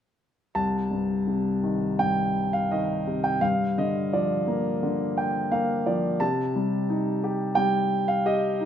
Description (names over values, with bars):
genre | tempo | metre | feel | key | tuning
classical, lyrical solo piano | 82-90 BPM | 4/4 | rubato | C dorian | A4 = 440 Hz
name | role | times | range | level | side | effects
warm concert grand piano | solo | 0.6-8.7 s | C2 to A5 | -23 LUFS | equal | none
room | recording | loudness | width
moderate recital hall reverb, RT60 1.3 s | none | -23 LUFS | side -9 dB against mid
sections
0.5-8.7 A section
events
grand piano fill 4.8-6.2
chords
0.5 Cm; 3.4 Gm7; 6.2 Cm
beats
| 0.55 1.27 2.00 2.72 | 3.43 4.13 4.82 5.51 | 6.21 6.88 7.56 8.25